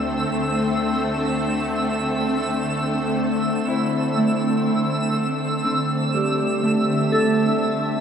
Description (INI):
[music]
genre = ambient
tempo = 61 BPM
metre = 4/4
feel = straight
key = unclear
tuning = A4 = 440 Hz
[part]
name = shimmering ambient pad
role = sustained chords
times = 0.0-8.0 s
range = D3 to E5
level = -22 LUFS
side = left 1 dB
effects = chorus, built-in reverb
[part]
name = mellow electric guitar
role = arpeggios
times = 0.0-8.0 s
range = G3 to C5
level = -23 LUFS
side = right 2 dB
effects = tape echo
[part]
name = rich studio cello section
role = bass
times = 0.0-3.2 s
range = D2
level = -35 LUFS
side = left 1 dB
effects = tube saturation
[part]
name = twinkling granular texture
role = texture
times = 0.0-8.0 s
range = E6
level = -27 LUFS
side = right 1 dB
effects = built-in reverb
[sound]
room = wet shimmer reverb, RT60 8.1 s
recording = none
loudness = -19 LUFS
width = side -7 dB against mid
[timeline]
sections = 0.0-3.2 A section; 3.2-8.0 B section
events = none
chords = 0.0 D7sus2; 3.2 D5